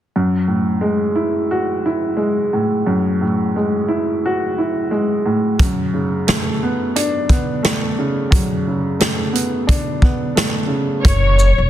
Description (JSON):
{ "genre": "hip hop, boom-bap hip-hop", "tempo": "88 BPM", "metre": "4/4", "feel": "swing 56% on 16ths", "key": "F# minor", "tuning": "A4 = 440 Hz", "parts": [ { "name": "dark upright piano", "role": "accompaniment", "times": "0.2-11.1 s", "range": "F#2 to F#4", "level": "-17 LUFS", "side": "equal", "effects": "cassette tape, high-pass filter, low-pass filter" }, { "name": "vintage drum kit", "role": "drums", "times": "5.6-11.6 s", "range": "hi-hat, kick drum, rim click, shaker, snare drum", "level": "-17 LUFS", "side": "equal", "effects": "soft clipping on snare" }, { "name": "warm studio violin section", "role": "melody", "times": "11.0-11.7 s", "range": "C#5", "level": "-18 LUFS", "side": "left 3 dB", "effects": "high-pass filter, low-pass filter, ping-pong delay" }, { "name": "upright bass", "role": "bass", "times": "11.1-11.7 s", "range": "E1 to F#1", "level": "-14 LUFS", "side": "equal", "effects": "none" } ], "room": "light reverb, small room reverb", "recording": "dense, heavily limited modern master", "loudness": "-15 LUFS", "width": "side -12 dB against mid", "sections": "0.1-11.0 A section", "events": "none", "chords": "0.1 F#m9; 5.6 Bm9/F#; 11.0 F#7(no3)" }